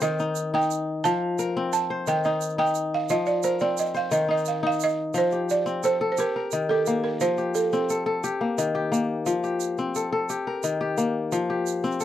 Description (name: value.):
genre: west african traditional, West African string and xylophone music.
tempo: 117 BPM (dotted quarters).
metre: 12/8.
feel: straight.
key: F mixolydian.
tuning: A4 = 442 Hz.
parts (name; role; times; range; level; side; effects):
balafon; melody; 0.0-8.7 s; A4 to A5; -25 LUFS; right 5 dB; none.
kora; arpeggios; 0.0-12.0 s; Eb3 to C5; -25 LUFS; left 3 dB; none.
tube shaker; percussion; 0.0-12.0 s; none; -37 LUFS; right 15 dB; none.
room: little or no reverb.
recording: dry, close 1970s-style studio recording.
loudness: -22 LUFS.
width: side -12 dB against mid.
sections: 0.0-5.1 A section; 5.1-12.0 B section.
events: balafon solo 0.0-5.1.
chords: 0.0 Eb; 1.0 F; 2.1 Eb; 3.1 F5; 4.1 Ebsus2; 5.1 F; 6.2 Eb; 7.2 F; 8.2 Eb; 9.3 F; 10.3 Eb; 11.3 F5.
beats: 0.01 0.52 | 1.04 1.55 2.06 2.58 | 3.09 3.60 4.12 4.63 | 5.15 5.66 6.17 6.69 | 7.20 7.72 8.23 8.75 | 9.26 9.78 10.29 10.81 | 11.32 11.84.